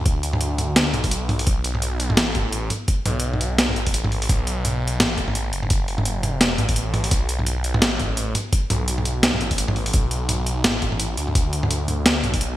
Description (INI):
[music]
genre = half-time drum and bass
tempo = 170 BPM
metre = 4/4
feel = swing 58% on 16ths, half-time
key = B minor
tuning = A4 = 439 Hz
[part]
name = phased detuned saw bass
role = bass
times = 0.0-12.6 s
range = F#1 to D2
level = -24 LUFS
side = equal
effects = phaser
[part]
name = boom bap sampler-style drum kit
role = drums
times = 0.1-12.5 s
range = hi-hat, snare drum, toms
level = -21 LUFS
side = equal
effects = gated reverb
[part]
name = electronic kick drum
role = drums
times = 0.1-12.4 s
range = none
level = -21 LUFS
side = equal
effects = none
[sound]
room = light reverb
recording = bright 1980s-style digital production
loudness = -19 LUFS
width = side -14 dB against mid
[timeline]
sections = 0.0-12.6 A section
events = none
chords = none